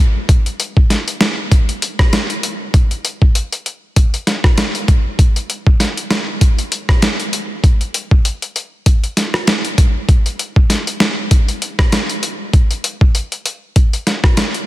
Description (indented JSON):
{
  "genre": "dancehall",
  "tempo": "98 BPM",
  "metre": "4/4",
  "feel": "swing 56% on 16ths",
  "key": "none",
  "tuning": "none",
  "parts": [
    { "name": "boom bap sampler-style drum kit", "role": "drums", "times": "0.3-14.7 s", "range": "hi-hat, kick drum, rim click, snare drum", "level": "-12 LUFS", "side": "equal", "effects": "none" }
  ],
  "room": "light reverb",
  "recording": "dense, heavily limited modern master",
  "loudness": "-13 LUFS",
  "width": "side -16 dB against mid",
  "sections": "0.0-14.7 A section",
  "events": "none",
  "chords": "none"
}